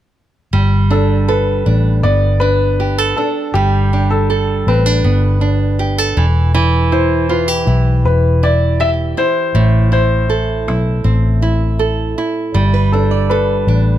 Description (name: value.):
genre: acoustic pop.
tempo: 80 BPM.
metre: 4/4.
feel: straight.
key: G major.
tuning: A4 = 440 Hz.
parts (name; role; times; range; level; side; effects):
nylon-string guitar; accompaniment; 0.5-14.0 s; A2 to A4; -18 LUFS; right 5 dB; none.
vintage muted fingered electric bass; bass; 0.5-14.0 s; E1 to B1; -14 LUFS; left 1 dB; none.
dark upright piano; melody; 0.9-14.0 s; G4 to E5; -18 LUFS; left 3 dB; none.
fingerpicked plugged-in steel-string acoustic guitar; arpeggios; 12.7-13.6 s; B4 to D5; -24 LUFS; right 10 dB; none.
room: little or no reverb.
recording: close, detailed microphones.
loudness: -12 LUFS.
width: side -12 dB against mid.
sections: 0.5-14.0 A section.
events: none.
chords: 0.5 Gadd9; 6.2 Em; 9.6 Am; 12.6 Gadd9.